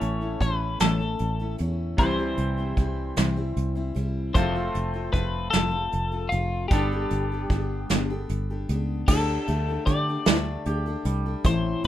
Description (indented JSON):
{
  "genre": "folk rock and heartland rock",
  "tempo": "51 BPM (dotted quarters)",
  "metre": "6/8",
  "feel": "straight",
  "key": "G mixolydian",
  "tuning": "A4 = 444 Hz",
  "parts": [
    { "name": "twelve-string electric guitar", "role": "melody", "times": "0.0-11.8 s", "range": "F4 to D5", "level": "-30 LUFS", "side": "left 3 dB", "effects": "harmonic tremolo, plate reverb" },
    { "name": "picked steel-string acoustic guitar", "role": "accompaniment", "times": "0.0-11.9 s", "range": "A2 to C5", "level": "-32 LUFS", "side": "left 4 dB", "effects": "none" },
    { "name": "twangy electric guitar", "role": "riff", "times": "0.0-11.9 s", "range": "A2 to C5", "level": "-32 LUFS", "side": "equal", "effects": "none" },
    { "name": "fingered electric bass", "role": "bass", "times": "0.0-11.9 s", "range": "F1 to D3", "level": "-27 LUFS", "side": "equal", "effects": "none" },
    { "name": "soft brush drum kit", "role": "drums", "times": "0.0-11.9 s", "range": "crash cymbal, hi-hat, kick drum, snare drum", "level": "-24 LUFS", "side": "right 1 dB", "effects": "none" }
  ],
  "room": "light reverb",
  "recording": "rough home demo mix",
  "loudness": "-23 LUFS",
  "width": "side -12 dB against mid",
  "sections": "0.0-9.1 A section; 9.1-11.9 B section",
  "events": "none",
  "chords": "0.0 A; 2.0 C; 4.3 F; 6.7 Gadd9; 9.1 Dsus4"
}